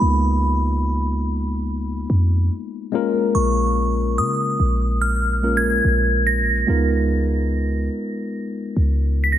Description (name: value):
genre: contemporary R&B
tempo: 72 BPM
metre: 4/4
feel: straight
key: unclear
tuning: A4 = 440 Hz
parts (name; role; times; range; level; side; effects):
- glassy synth bell; melody; 0.0-9.4 s; B5 to B6; -24 LUFS; right 1 dB; chorus, tremolo, ping-pong delay
- tine electric piano; accompaniment; 0.0-9.4 s; G#3 to A#4; -23 LUFS; moving between left 7 dB and right 3 dB; auto-pan
- clean 808-style bass; bass; 0.0-9.4 s; A#1 to C#3; -20 LUFS; equal; none
room: wet lush hall reverb, RT60 2.4 s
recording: dreamy mix soaked in reverb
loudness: -18 LUFS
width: side -11 dB against mid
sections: 0.0-9.4 A section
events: none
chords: 0.0 C#13; 2.9 A#m7; 6.7 C#13